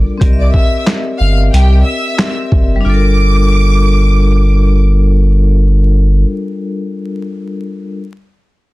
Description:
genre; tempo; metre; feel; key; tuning
hip hop, boom-bap hip-hop; 91 BPM; 4/4; swing 55% on 16ths; G dorian; A4 = 440 Hz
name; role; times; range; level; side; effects
vibraphone with hard mallets; accompaniment; 0.0-8.0 s; G3 to E5; -18 LUFS; left 3 dB; none
saturated sub bass; bass; 0.0-6.2 s; F#1 to C2; -10 LUFS; equal; none
boom bap sampler-style drum kit; drums; 0.2-2.7 s; handclaps, hi-hat, kick drum, snare drum; -13 LUFS; equal; none
warm studio violin section; melody; 0.4-4.8 s; G4 to F6; -20 LUFS; equal; digital delay
room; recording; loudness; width
little or no reverb; dense, heavily limited modern master, vinyl crackle; -9 LUFS; side -20 dB against mid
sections
0.0-2.8 A section; 2.8-5.5 B section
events
none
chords
0.2 C7; 2.8 Gm7

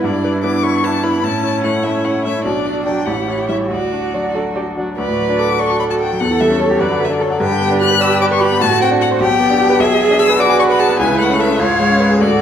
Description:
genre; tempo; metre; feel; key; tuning
quick classical-period movement for piano quartet; 99 BPM (dotted quarters); 6/8; rubato; D major; A4 = 440 Hz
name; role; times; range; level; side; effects
warm violin; melody; 0.0-12.4 s; C#5 to F#6; -19 LUFS; left 7 dB; none
dark cello; second line; 0.0-12.4 s; C#4 to B4; -19 LUFS; right 6 dB; none
bright grand piano; accompaniment; 0.0-12.4 s; A1 to A5; -16 LUFS; left 1 dB; none
warm viola; accompaniment; 0.0-12.4 s; E4 to C#5; -22 LUFS; right 3 dB; none
room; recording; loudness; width
wet recital hall reverb, RT60 1.3 s; none; -13 LUFS; side -9 dB against mid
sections
0.0-5.0 A section; 5.0-12.4 B section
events
none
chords
0.0 Em7/G; 1.2 A; 2.4 Bm; 3.1 A7; 3.7 D; 6.2 A7/E; 6.8 D/F#; 7.4 G; 8.6 D7/A; 9.2 G/B; 9.8 E7/B; 11.0 A/C#; 11.6 C#7

